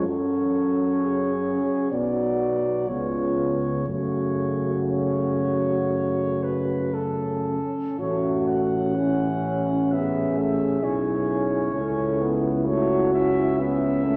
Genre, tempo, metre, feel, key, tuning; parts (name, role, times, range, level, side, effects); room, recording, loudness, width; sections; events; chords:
classical, hymn-like piece for brass band; 54-66 BPM; 4/4; rubato; F# minor, A major from 8.0 s; A4 = 440 Hz
warm flugelhorn; melody; 0.0-14.2 s; A4 to F#5; -32 LUFS; equal
dark French horn section; second line; 0.0-14.2 s; C#4 to A4; -30 LUFS; equal
warm euphonium; accompaniment; 0.0-14.2 s; A3 to E4; -30 LUFS; equal
warm trombone; accompaniment; 0.0-14.2 s; C#3 to C#4; -33 LUFS; equal
mellow tuba; bass; 0.0-14.2 s; A1 to F#2; -30 LUFS; equal
wet scoring stage reverb, RT60 1.6 s; -24 LUFS; mono
0.0-8.0 A section; 8.0-14.2 B section
0.1 F#m; 1.9 Bm; 2.9 C#7; 3.9 F#m; 8.0 A; 11.7 A/C#